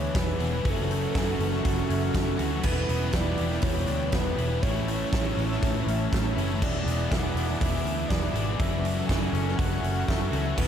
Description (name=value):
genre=rock, shoegaze and dream pop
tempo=121 BPM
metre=4/4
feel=straight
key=unclear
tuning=A4 = 441 Hz
part: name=breathy flute-like synth lead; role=melody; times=0.0-10.7 s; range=A4 to G#5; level=-34 LUFS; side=right 1 dB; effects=chorus, tape echo
part: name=airy breathy pad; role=sustained chords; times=0.0-10.7 s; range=A4 to E6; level=-37 LUFS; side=equal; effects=chorus
part: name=twangy electric guitar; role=arpeggios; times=0.0-10.7 s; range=E3 to D4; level=-39 LUFS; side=left 7 dB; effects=ensemble chorus, tape echo
part: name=overdriven semi-hollow guitar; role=riff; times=0.0-10.7 s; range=E3 to D5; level=-33 LUFS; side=right 10 dB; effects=reverse reverb
part: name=sludgy distorted guitar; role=riff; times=0.0-10.7 s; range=A2 to G#4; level=-36 LUFS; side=left 2 dB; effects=overdrive
part: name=thick fuzz guitar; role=riff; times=0.0-10.7 s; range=E2 to A3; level=-33 LUFS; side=left 8 dB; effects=distortion, analog chorus
part: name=vintage muted fingered electric bass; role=bass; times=0.0-10.7 s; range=E1 to D2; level=-30 LUFS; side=equal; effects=none
part: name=huge arena drum kit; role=drums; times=0.1-10.7 s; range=crash cymbal, hi-hat, kick drum, snare drum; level=-29 LUFS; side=equal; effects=none
room=moderate huge ambient reverb, RT60 6.0 s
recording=dreamy mix soaked in reverb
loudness=-24 LUFS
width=side -9 dB against mid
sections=0.0-10.7 A section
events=none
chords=0.0 E7; 0.6 F#m7; 2.6 Em7; 4.6 A; 6.6 E7; 8.6 F#m7